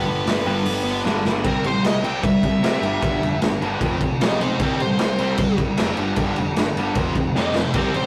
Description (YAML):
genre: punk rock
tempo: 152 BPM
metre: 4/4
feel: straight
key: C major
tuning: A4 = 440 Hz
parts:
  - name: bluesy overdriven lead guitar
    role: melody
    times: 0.0-8.1 s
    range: B3 to G5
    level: -27 LUFS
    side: equal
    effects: distortion
  - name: overdriven electric guitar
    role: riff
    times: 0.0-8.1 s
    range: F2 to C4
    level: -29 LUFS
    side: equal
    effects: none
  - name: tight distorted guitar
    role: riff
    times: 0.0-8.1 s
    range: F2 to C4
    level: -27 LUFS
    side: equal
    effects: distortion
  - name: tight distorted guitar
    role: riff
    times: 0.0-1.4, 7.7-8.1 s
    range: G2 to C4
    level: -30 LUFS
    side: equal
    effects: distortion
  - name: fuzz picked electric bass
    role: bass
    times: 0.0-8.1 s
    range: F1 to C3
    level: -31 LUFS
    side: equal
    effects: overdrive
  - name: raw garage drum kit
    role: drums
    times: 0.3-8.0 s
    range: crash cymbal, hi-hat, kick drum, snare drum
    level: -25 LUFS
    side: equal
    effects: none
room: light reverb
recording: rough rehearsal-room recording, warm saturation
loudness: -21 LUFS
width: mono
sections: 0.0-1.4 A section; 1.4-8.1 B section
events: drum fill 1.1-1.4, 7.4-7.8; lead electric guitar solo 1.4-8.1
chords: 0.0 G; 1.4 C; 2.8 G5; 3.8 F5; 4.6 C5; 6.0 G5; 7.0 F5